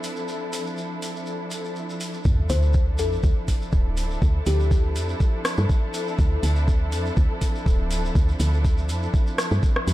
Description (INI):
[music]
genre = afro house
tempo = 122 BPM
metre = 4/4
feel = swing 54% on 16ths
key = D minor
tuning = A4 = 440 Hz
[part]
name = muted studio string section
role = sustained chords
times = 0.0-9.9 s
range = F3 to A4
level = -30 LUFS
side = left 1 dB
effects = sidechain pumping
[part]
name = afro-pop drum kit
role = drums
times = 0.0-9.9 s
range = hi-hat, rim click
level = -29 LUFS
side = equal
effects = none
[part]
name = shekere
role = percussion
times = 0.0-9.9 s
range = none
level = -39 LUFS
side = left 1 dB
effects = none
[part]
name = woody FM bass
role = bass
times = 2.3-9.9 s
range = D1 to G2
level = -22 LUFS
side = equal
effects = sidechain pumping
[part]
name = electronic kick drum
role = drums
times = 2.3-9.7 s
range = none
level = -20 LUFS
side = equal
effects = none
[part]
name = sub drop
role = sound effects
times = 2.3-4.2 s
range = none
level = -30 LUFS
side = equal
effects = none
[part]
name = kalimba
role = melody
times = 2.5-5.2 s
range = G4 to C5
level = -31 LUFS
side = left 6 dB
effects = ping-pong delay
[sound]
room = little or no reverb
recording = none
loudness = -20 LUFS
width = side -16 dB against mid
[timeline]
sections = 0.0-2.3 A section; 2.3-9.9 B section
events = drop 2.3-9.9; impact 2.3-4.2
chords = 0.0 Dm9